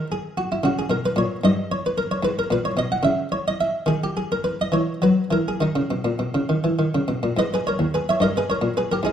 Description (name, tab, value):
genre	classical, baroque-style suite movement for harpsichord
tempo	67-75 BPM (dotted quarters)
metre	6/8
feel	rubato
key	G# minor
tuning	A4 = 442 Hz
part	buff-stop harpsichord	solo	0.0-9.1 s	D#2 to F#5	-20 LUFS	equal	none
room	wet stone room reverb, RT60 1.1 s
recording	dark, warm production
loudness	-20 LUFS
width	side -9 dB against mid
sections	0.0-7.4 A section; 7.4-9.1 B section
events	none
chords	0.0 F#7sus2/D#; 0.6 G#m11; 1.4 N.C.; 2.2 G#m; 3.1 N.C.; 4.7 E69; 5.6 A#madd11; 6.5 D#5; 7.4 G#m; 8.2 Gdim